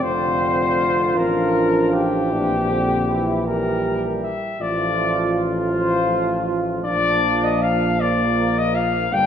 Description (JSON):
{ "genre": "classical, hymn-like piece for brass band", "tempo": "53 BPM (dotted quarters)", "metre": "6/8", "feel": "rubato", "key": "F major", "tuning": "A4 = 439 Hz", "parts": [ { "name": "dark cornet", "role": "melody", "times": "0.0-9.3 s", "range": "G4 to G5", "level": "-21 LUFS", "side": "left 4 dB", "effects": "none" }, { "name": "mellow French horn section", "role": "second line", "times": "0.0-9.3 s", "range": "G3 to D4", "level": "-29 LUFS", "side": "right 4 dB", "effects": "none" }, { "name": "mellow euphonium", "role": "accompaniment", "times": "0.0-9.3 s", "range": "D3 to G3", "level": "-26 LUFS", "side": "right 4 dB", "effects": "none" }, { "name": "mellow trombone section", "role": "accompaniment", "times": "0.0-9.3 s", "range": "Bb3 to G4", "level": "-24 LUFS", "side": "equal", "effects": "none" }, { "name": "mellow tuba", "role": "bass", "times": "0.0-9.3 s", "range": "F1 to Bb1", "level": "-26 LUFS", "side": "right 1 dB", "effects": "none" } ], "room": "wet recital hall reverb, RT60 1.4 s", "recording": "recorded in a church or concert hall", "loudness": "-17 LUFS", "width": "side -8 dB against mid", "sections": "0.0-9.3 A section", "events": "none", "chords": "0.0 F; 2.3 C7/Bb; 4.6 F/A; 6.8 Bb", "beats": "| 0.03 1.18 | 2.32 3.47 | 4.60 5.71 | 6.84 7.99 | 9.13" }